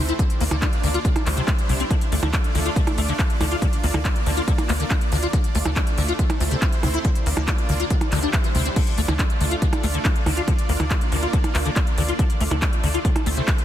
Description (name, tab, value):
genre	uplifting trance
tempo	140 BPM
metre	4/4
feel	straight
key	D minor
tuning	A4 = 440 Hz
part	supersaw pad	sustained chords	0.0-13.6 s	G3 to D5	-29 LUFS	right 2 dB	sidechain pumping
part	liquid acid bass	arpeggios	0.0-13.5 s	C3 to F4	-27 LUFS	left 4 dB	ensemble chorus, sidechain pumping, ping-pong delay
part	tight sequencer bass	bass	0.0-13.4 s	C2 to D2	-23 LUFS	equal	sidechain pumping
part	techno drum kit	drums	0.1-13.6 s	crash cymbal, handclaps, hi-hat, percussion blips	-27 LUFS	right 1 dB	sidechain pumping on hats, sidechain pumping on cymbals, sidechain pumping on perc
part	electronic kick drum	drums	0.2-13.6 s	none	-22 LUFS	equal	none
room	little or no reverb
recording	dense, heavily limited modern master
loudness	-19 LUFS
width	side -11 dB against mid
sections	0.0-13.6 A section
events	none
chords	0.2 Bb/D; 1.0 Cadd9/D; 1.9 Dm; 3.6 Bb/D; 5.3 Dm; 6.2 Am/D; 7.0 Bb/D; 7.9 Cadd9/D; 8.8 Dm; 10.5 Bb/D; 12.2 Dm; 13.0 Am